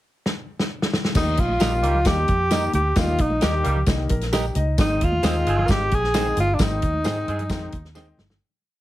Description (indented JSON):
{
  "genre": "uptempo 1960s-style soul",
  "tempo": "132 BPM",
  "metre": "4/4",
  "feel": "straight",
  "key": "Eb mixolydian",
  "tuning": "A4 = 440 Hz",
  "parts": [
    { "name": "natural country drum kit", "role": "drums", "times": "0.3-8.4 s", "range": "crash cymbal, hi-hat, kick drum, snare drum", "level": "-23 LUFS", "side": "equal", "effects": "none" },
    { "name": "clear grand piano", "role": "accompaniment", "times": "1.1-8.2 s", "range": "Eb3 to G5", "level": "-30 LUFS", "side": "left 3 dB", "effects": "none" },
    { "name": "tambourine", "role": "percussion", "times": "1.1-8.1 s", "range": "none", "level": "-38 LUFS", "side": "left 6 dB", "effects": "none" },
    { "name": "breathy tenor saxophone", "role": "melody", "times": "1.2-8.0 s", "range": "D4 to Ab4", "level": "-23 LUFS", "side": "equal", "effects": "slapback echo" },
    { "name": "vintage muted fingered electric bass", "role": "bass", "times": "1.2-8.4 s", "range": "G1 to Ab2", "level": "-24 LUFS", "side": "equal", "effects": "none" },
    { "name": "congas", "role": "percussion", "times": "1.2-8.3 s", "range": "none", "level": "-34 LUFS", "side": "right 2 dB", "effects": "none" },
    { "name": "mellow horn section", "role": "second line", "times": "1.6-7.4 s", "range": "Eb3 to Ab4", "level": "-30 LUFS", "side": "right 3 dB", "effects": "none" },
    { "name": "semi-hollow electric guitar", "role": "stabs", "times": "1.6-8.1 s", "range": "G4 to Eb5", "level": "-30 LUFS", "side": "right 6 dB", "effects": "none" }
  ],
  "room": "light reverb",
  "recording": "heavily compressed radio sound",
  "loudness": "-19 LUFS",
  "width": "side -15 dB against mid",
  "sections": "0.0-1.2 pickup bar; 1.2-8.4 verse",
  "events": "drum fill 0.2-1.2, 8.0-8.4; grand piano fill 4.1-4.8; fade-out 6.6-8.4",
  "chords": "0.0 N.C.; 1.2 Eb; 4.8 Ab"
}